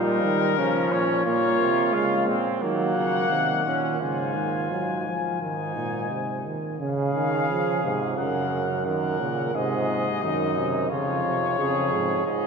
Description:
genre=classical, imitative canzona for brass ensemble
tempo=88 BPM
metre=4/4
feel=straight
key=Db major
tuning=A4 = 440 Hz
part: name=mellow trumpet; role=melody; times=0.0-12.5 s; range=Bb4 to Ab5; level=-27 LUFS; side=left 6 dB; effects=none
part: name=warm flugelhorn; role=second line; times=0.0-12.5 s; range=Bb3 to Bb4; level=-28 LUFS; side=right 5 dB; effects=none
part: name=clear trombone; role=accompaniment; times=0.0-12.3 s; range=Ab2 to Bb3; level=-28 LUFS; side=right 2 dB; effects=none
part: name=clear euphonium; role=bass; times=0.0-12.5 s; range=F2 to Eb3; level=-29 LUFS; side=right 2 dB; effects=none
room=wet cathedral reverb, RT60 5.0 s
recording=none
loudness=-22 LUFS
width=side -5 dB against mid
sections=0.0-6.8 A section; 6.8-12.5 B section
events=none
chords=0.0 Gdim/Bb; 1.3 Bbm; 2.6 Ebm; 4.0 Absus4; 5.4 Ab; 6.8 Db; 8.2 Gb; 9.5 Ab; 10.9 Db/F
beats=0.58 | 1.26 1.94 2.62 3.30 | 4.00 4.70 5.40 6.11 | 6.80 7.50 8.18 8.86 | 9.54 10.22 10.91 11.58 | 12.26

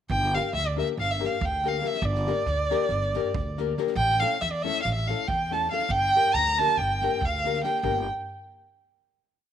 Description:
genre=balkan folk, Balkan wedding band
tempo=279 BPM (eighths)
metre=9/8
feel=straight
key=G dorian sharp4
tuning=A4 = 440 Hz
part: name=dark violin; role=melody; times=0.1-8.1 s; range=D5 to Bb5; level=-25 LUFS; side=right 1 dB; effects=none
part: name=upright bass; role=bass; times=0.1-8.1 s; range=G1 to E2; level=-31 LUFS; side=right 1 dB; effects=none
part: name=natural country drum kit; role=percussion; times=0.1-8.1 s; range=kick drum, snare drum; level=-37 LUFS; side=right 3 dB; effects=none
part: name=nylon-string guitar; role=accompaniment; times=0.3-8.1 s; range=A3 to Bb4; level=-31 LUFS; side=left 13 dB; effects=none
room=moderate echo chamber reverb, RT60 1.3 s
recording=1960s-style stereo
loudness=-23 LUFS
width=side -9 dB against mid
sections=0.1-7.8 A section; 7.8-9.5 final chord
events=none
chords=0.1 Gm; 4.0 A; 5.9 Gm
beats=| 0.10 0.31 0.53 0.74 0.95 1.17 1.38 1.59 1.81 | 2.02 2.23 2.45 2.66 2.88 3.09 3.31 3.52 3.74 | 3.95 4.17 4.38 4.60 4.81 5.03 5.25 5.46 5.68 | 5.89 6.11 6.33 6.54 6.76 6.98 7.19 7.41 7.62 | 7.84 8.06

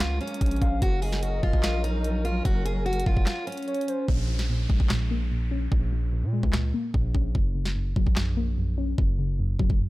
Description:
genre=hip hop, trap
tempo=147 BPM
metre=4/4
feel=half-time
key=Bb minor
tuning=A4 = 441 Hz
part: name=picked steel-string acoustic guitar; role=melody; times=0.0-4.0 s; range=Db4 to Ab4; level=-31 LUFS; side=equal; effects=tape echo
part: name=dark studio string section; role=sustained chords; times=0.0-4.1 s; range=Gb3 to Bb4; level=-36 LUFS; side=equal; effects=none
part: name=distorted 808-style bass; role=bass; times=0.0-9.8 s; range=Gb1 to Bb2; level=-27 LUFS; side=equal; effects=distortion
part: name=trap drum kit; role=drums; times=0.0-9.8 s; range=handclaps, hi-hat, kick drum, snare drum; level=-26 LUFS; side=equal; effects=none
part: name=gliding portamento lead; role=second line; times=0.6-4.1 s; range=C5 to F5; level=-34 LUFS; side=equal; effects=chorus, tape echo
part: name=warbly dusty pluck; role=accompaniment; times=4.1-9.9 s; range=Gb2 to Db4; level=-30 LUFS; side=equal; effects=chorus, low-pass filter
part: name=downlifter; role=sound effects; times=4.1-7.3 s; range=none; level=-41 LUFS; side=equal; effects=none
room=little or no reverb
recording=dark, warm production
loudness=-23 LUFS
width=side -19 dB against mid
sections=0.0-4.1 A section; 4.1-9.9 B section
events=break 3.3-4.1; hi-hats muted 4.1-9.9; filter sweep on synth pluck 4.1-9.9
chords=0.0 Bbm7; 0.8 Gb; 4.1 Bbm7; 7.3 Gb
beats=0.00 0.41 | 0.82 1.23 1.64 2.04 | 2.45 2.86 3.27 3.68 | 4.08 4.49 4.90 5.31 | 5.72 6.12 6.53 6.94 | 7.35 7.76 8.17 8.57 | 8.98 9.39 9.80

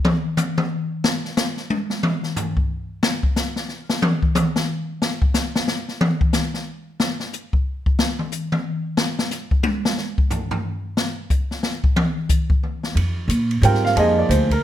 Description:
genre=modal jazz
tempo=181 BPM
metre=3/4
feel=swing 62% on 8ths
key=F dorian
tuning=A4 = 439 Hz
part: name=open jazz drum kit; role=drums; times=0.0-14.6 s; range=hi-hat, kick drum, ride cymbal, snare drum, toms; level=-20 LUFS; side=left 1 dB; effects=none
part: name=upright bass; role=bass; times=12.9-14.6 s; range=D2 to Bb2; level=-18 LUFS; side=equal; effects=none
part: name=warm baby grand piano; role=accompaniment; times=13.6-14.6 s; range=F3 to G5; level=-17 LUFS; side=right 2 dB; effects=none
room=light reverb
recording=none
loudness=-19 LUFS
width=side -12 dB against mid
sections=0.0-13.0 A section; 13.0-14.6 A section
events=drum solo 0.0-13.0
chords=0.0 N.C.; 13.0 Fm9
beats=| 0.04 0.37 0.70 | 1.03 1.37 1.70 | 2.03 2.36 2.69 | 3.02 3.36 3.69 | 4.02 4.35 4.68 | 5.01 5.34 5.67 | 6.01 6.34 6.67 | 7.00 7.33 7.66 | 7.99 8.32 8.65 | 8.98 9.32 9.65 | 9.98 10.31 10.64 | 10.97 11.30 11.63 | 11.96 12.30 12.63 | 12.96 13.29 13.63 | 13.96 14.29 14.62

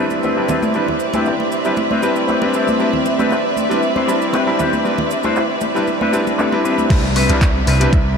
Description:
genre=nu-disco, nu disco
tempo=117 BPM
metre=4/4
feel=straight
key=unclear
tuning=A4 = 440 Hz
part: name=bright grand piano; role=accompaniment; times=0.0-7.9 s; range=G3 to B5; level=-19 LUFS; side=equal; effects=sidechain pumping, low-pass filter, ping-pong delay
part: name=rich studio violin section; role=sustained chords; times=0.0-8.2 s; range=C4 to E5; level=-20 LUFS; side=right 1 dB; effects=sidechain pumping
part: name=electric guitar with an envelope filter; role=riff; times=0.0-7.9 s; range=C4 to C5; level=-23 LUFS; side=left 4 dB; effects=lush chorus, low-pass filter, ping-pong delay
part: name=pop drum kit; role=drums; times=0.1-8.0 s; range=crash cymbal, handclaps, hi-hat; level=-29 LUFS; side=right 1 dB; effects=none
part: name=cabasa and congas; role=percussion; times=0.1-6.9 s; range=none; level=-24 LUFS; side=equal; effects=none
part: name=vintage slap bass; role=bass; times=6.9-8.2 s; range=C2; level=-16 LUFS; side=equal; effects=none
part: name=electronic kick drum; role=drums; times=6.9-8.0 s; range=none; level=-14 LUFS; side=equal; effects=overdrive
part: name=downlifter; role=sound effects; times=6.9-8.2 s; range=none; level=-26 LUFS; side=equal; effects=none
room=wet huge ambient reverb, RT60 8.1 s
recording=dreamy mix soaked in reverb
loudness=-14 LUFS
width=side -6 dB against mid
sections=0.0-6.9 A section; 6.9-8.2 B section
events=drop 6.9-8.2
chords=0.0 Cmaj9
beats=0.23 | 0.75 1.26 1.77 2.29 | 2.80 3.31 3.83 4.34 | 4.85 5.36 5.88 6.39 | 6.90 7.42 7.93

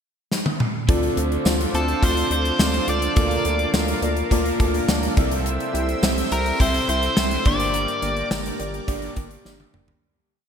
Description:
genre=1980s-style pop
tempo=105 BPM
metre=4/4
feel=straight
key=D minor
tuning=A4 = 440 Hz
part: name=gated 80s drum kit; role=drums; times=0.3-10.0 s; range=hi-hat, kick drum, snare drum, toms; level=-23 LUFS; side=equal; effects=gated reverb
part: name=mellow FM electric piano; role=accompaniment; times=0.9-10.0 s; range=G2 to A5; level=-26 LUFS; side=left 1 dB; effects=chorus, phaser
part: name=overdriven electric guitar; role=accompaniment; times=0.9-10.5 s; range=G2 to D4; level=-34 LUFS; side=right 1 dB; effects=wide subtle chorus
part: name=sweeping resonant pad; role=sustained chords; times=0.9-10.0 s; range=Bb4 to E6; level=-30 LUFS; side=right 1 dB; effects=chorus
part: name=mellow synth brass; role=stabs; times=0.9-10.0 s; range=Bb3 to Bb4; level=-30 LUFS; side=right 2 dB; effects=chorus, ping-pong delay
part: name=round analog bass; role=bass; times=0.9-9.9 s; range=F#1 to D2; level=-26 LUFS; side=equal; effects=none
part: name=tambourine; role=percussion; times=1.5-9.6 s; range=none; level=-38 LUFS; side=right 8 dB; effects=none
part: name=biting lead guitar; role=melody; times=1.7-8.3 s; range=A4 to D5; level=-25 LUFS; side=equal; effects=overdrive
room=moderate lush hall reverb, RT60 3.0 s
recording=bright 1980s-style digital production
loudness=-19 LUFS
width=side -7 dB against mid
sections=0.0-0.9 pickup bar; 0.9-10.0 chorus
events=drum fill 0.3-0.9, 9.5-10.0; FM electric piano fill 4.3-5.5; fade-out 7.7-10.0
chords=0.0 N.C.; 0.9 Dm7; 3.2 Bbmaj7/D; 5.2 C; 7.5 Gm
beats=0.31 | 0.88 1.46 2.03 2.60 | 3.17 3.74 4.31 4.88 | 5.46 6.03 6.60 7.17 | 7.74 8.31 8.88 9.46

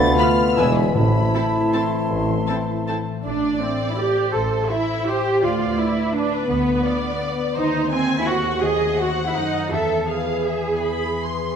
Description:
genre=classical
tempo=148-182 BPM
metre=3/4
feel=rubato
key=A minor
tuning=A4 = 441 Hz
part: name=muted studio violin section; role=melody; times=0.0-11.6 s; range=B4 to A6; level=-33 LUFS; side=left 3 dB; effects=none
part: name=clear clarinet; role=second line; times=0.0-3.0 s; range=E4 to F4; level=-29 LUFS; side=right 1 dB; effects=none
part: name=mellow hollow concert flute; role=second line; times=0.0-3.1 s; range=G#5 to B5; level=-26 LUFS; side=left 1 dB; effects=none
part: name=warm bassoon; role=accompaniment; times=0.0-3.0 s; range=B3 to E4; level=-25 LUFS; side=left 1 dB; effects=none
part: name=mellow French horn section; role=sustained chords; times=0.0-3.1 s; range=B3 to F4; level=-26 LUFS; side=left 4 dB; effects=none
part: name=warm trombone section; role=sustained chords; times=0.0-3.0 s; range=D3 to A3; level=-29 LUFS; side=right 3 dB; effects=none
part: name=concert harp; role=arpeggios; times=0.0-11.6 s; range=A2 to E5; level=-27 LUFS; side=left 8 dB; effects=none
part: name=clear tuba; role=bass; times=0.0-2.4 s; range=E1 to D2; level=-26 LUFS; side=right 2 dB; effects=none
part: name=muted studio cello section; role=bass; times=0.0-11.6 s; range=D2 to A4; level=-25 LUFS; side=right 2 dB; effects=none
part: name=muted studio double bass section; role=bass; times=0.0-11.6 s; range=E1 to F#2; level=-27 LUFS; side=right 4 dB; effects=none
part: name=muted studio violin section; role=second line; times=0.2-11.6 s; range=A4 to C6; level=-28 LUFS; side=left 1 dB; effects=none
part: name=muted studio viola section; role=accompaniment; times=0.2-11.6 s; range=B3 to A4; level=-25 LUFS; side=right 2 dB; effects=none
part: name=timpani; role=percussion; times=1.0-1.5 s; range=A2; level=-23 LUFS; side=equal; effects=none
room=wet scoring stage reverb, RT60 1.7 s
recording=none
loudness=-18 LUFS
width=side -7 dB against mid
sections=0.0-3.3 A section; 3.3-11.6 B section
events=none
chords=0.0 Bm7b5/D; 0.6 E; 1.0 Am; 5.4 Bdim/D; 7.6 D#dim7; 9.7 E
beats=0.19 0.58 | 0.95 1.33 1.73 | 2.10 2.48 2.88 | 3.25 3.61 3.99 | 4.34 4.70 5.07 | 5.42 5.78 6.14 | 6.49 6.84 7.21 | 7.56 7.91 8.28 | 8.62 8.98 9.36 | 9.72 10.09 10.48 | 10.84 11.21

